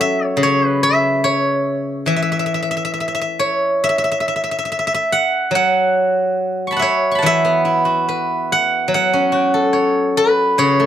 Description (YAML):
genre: chinese traditional, Chinese solo plucked strings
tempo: 71 BPM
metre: 4/4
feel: rubato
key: unclear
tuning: A4 = 440 Hz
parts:
  - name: steel-string zither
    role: solo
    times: 0.0-10.9 s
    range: C#3 to C#6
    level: -14 LUFS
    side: equal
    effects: none
room: little or no reverb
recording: dry, close 1970s-style studio recording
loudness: -15 LUFS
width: side -10 dB against mid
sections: 0.0-10.9 A section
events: none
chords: none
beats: | 0.40 1.22 2.07 2.96 | 3.83 4.68 5.54 6.41 | 7.25 8.09 8.93 9.76 | 10.60